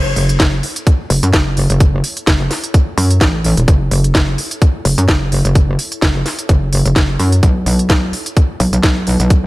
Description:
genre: bass house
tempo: 128 BPM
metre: 4/4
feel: swing 55% on 16ths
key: F# minor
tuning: A4 = 440 Hz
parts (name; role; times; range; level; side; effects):
- metallic wobble bass; bass; 0.0-9.5 s; E1 to F#2; -14 LUFS; equal; distortion, chorus, tube saturation, sidechain pumping
- ethereal airy pad; texture; 0.0-9.5 s; B3 to D5; -34 LUFS; left 1 dB; none
- garage drum kit; drums; 0.2-9.4 s; hi-hat, snare drum; -18 LUFS; equal; none
- electronic kick drum; drums; 0.4-9.4 s; none; -13 LUFS; equal; none
room: little or no reverb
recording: none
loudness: -11 LUFS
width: side -19 dB against mid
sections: 0.0-9.5 A section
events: none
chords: 0.0 F#m7; 7.4 Bm

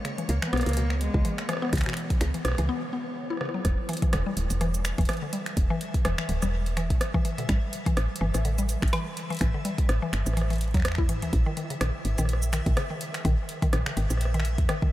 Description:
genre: IDM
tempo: 125 BPM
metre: 4/4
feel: swing 56% on 16ths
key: unclear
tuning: A4 = 440 Hz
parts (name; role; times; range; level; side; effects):
- mallet-like synth pluck; arpeggios; 0.0-14.9 s; B2 to E4; -32 LUFS; left 2 dB; chorus, analog delay
- booming analog drum machine; drums; 0.0-14.8 s; cabasa, finger snaps, hi-hat, rim click, toms; -33 LUFS; right 1 dB; diffuse ambient delay
- backwards swelling texture; texture; 0.0-14.9 s; C#5 to E5; -43 LUFS; left 2 dB; built-in reverb, wide subtle chorus, sidechain pumping
- dark cello; melody; 0.3-2.6 s; E3 to B3; -36 LUFS; equal; analog delay
- woody FM bass; bass; 0.3-14.7 s; D1 to A2; -27 LUFS; equal; none
- electronic kick drum; drums; 1.1-14.9 s; none; -25 LUFS; equal; none
room: light reverb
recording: none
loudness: -24 LUFS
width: side -15 dB against mid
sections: 0.0-3.6 A section; 3.6-14.9 B section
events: break 2.7-3.6; drum fill 3.3-3.6; band accent 3.4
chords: 0.0 C#m; 3.6 N.C.; 7.5 A5; 11.3 N.C.

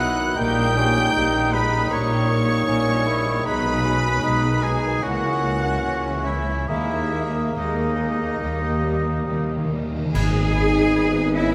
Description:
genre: classical, slow romantic movement for symphony orchestra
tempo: 68-79 BPM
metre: 4/4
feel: rubato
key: G# minor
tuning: A4 = 439 Hz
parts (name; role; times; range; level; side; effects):
- rich symphonic violin section; melody; 0.0-11.5 s; D#5 to G6; -34 LUFS; equal; none
- clear oboe; second line; 0.0-11.5 s; D#4 to G#5; -32 LUFS; equal; none
- concert flute; second line; 0.0-11.4 s; B5 to D#6; -34 LUFS; equal; none
- mellow clarinet; second line; 0.0-11.5 s; F#4 to D#5; -35 LUFS; equal; none
- rich symphonic violin section; second line; 0.0-11.5 s; A#3 to G#5; -39 LUFS; equal; none
- clear bassoon; accompaniment; 0.0-9.7 s; A#3 to E4; -32 LUFS; equal; none
- clear symphonic viola section; accompaniment; 0.0-11.5 s; D#3 to B4; -35 LUFS; equal; none
- mellow French horn section; sustained chords; 0.0-11.5 s; F#3 to G#4; -30 LUFS; equal; none
- clear trumpet; stabs; 0.0-9.7 s; D#4 to G5; -31 LUFS; equal; none
- rich studio double bass section; bass; 0.0-11.5 s; G#1 to D#2; -28 LUFS; equal; none
- rich symphonic cello section; bass; 0.0-11.5 s; C#2 to G#4; -30 LUFS; equal; none
- cymbal swell, clash cymbals and concert bass drum; percussion; 6.7-11.5 s; none; -32 LUFS; equal; none
- timpani; percussion; 6.7-11.3 s; G#2 to D#3; -30 LUFS; equal; none
- warm tuba; bass; 10.1-11.5 s; G#1; -33 LUFS; equal; none
room: wet scoring stage reverb, RT60 1.8 s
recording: none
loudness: -21 LUFS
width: mono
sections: 0.0-10.1 A section; 10.1-11.5 B section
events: timpani fill 8.4-10.1; band accent 10.1-11.0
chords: 0.4 D#7/A#; 3.5 G#m/B; 5.0 A#dim/C#; 6.7 D#sus4; 8.4 D#; 10.1 G#m

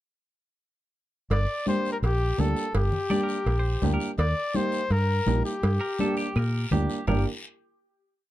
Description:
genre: latin, cumbia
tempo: 166 BPM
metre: 4/4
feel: straight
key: G minor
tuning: A4 = 440 Hz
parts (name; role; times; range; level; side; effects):
- warm trumpet; melody; 1.3-7.3 s; G4 to D5; -29 LUFS; left 2 dB; plate reverb
- fingered electric bass; bass; 1.3-7.2 s; G1 to Bb2; -24 LUFS; equal; none
- congas; percussion; 1.3-7.2 s; none; -31 LUFS; left 2 dB; none
- cowbell and timbales; percussion; 1.3-7.2 s; none; -34 LUFS; right 4 dB; none
- guiro; percussion; 1.3-7.2 s; none; -43 LUFS; left 3 dB; none
- warm upright piano; accompaniment; 1.7-7.2 s; Bb3 to G4; -30 LUFS; right 3 dB; none
- semi-hollow electric guitar; second line; 3.1-7.2 s; G4 to D5; -35 LUFS; right 2 dB; none
room: light reverb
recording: dark, warm production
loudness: -23 LUFS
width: side -14 dB against mid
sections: 1.3-7.1 A section; 7.1-8.3 final chord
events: none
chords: 1.3 Gm; 4.2 Eb; 5.6 Gm

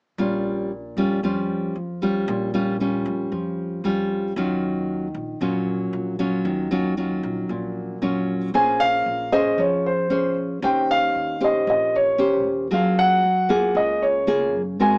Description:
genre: bossa nova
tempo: 115 BPM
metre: 4/4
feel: straight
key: Bb minor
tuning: A4 = 440 Hz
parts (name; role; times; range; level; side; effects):
- nylon-string guitar; accompaniment; 0.2-15.0 s; Bb2 to C5; -22 LUFS; equal; none
- upright bass; bass; 0.2-15.0 s; Bb1 to Ab2; -34 LUFS; equal; none
- warm concert grand piano; melody; 8.6-15.0 s; C5 to Ab5; -19 LUFS; equal; none
room: moderate small room reverb, RT60 0.5 s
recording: small speaker sound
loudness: -19 LUFS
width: side -31 dB against mid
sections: 0.2-8.5 A section; 8.5-15.0 B section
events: none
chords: 0.2 Bbm6; 4.4 Ebm9; 8.5 Bbm9; 10.6 Eb13; 12.7 Gbmaj9

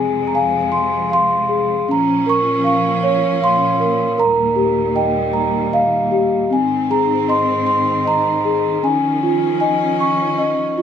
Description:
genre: children's music, lullaby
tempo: 78 BPM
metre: 3/4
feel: straight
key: Ab major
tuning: A4 = 439 Hz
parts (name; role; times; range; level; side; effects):
- large celesta; melody; 0.0-10.8 s; C4 to Db6; -15 LUFS; equal; none
- clear studio string section; sustained chords; 0.0-10.8 s; Eb2 to Db4; -22 LUFS; equal; none
room: light reverb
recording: none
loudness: -14 LUFS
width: side -8 dB against mid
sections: 0.0-10.8 A section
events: none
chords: 0.0 Fm; 1.9 Bbm; 4.2 Eb; 6.5 Ab; 8.8 Dbadd9

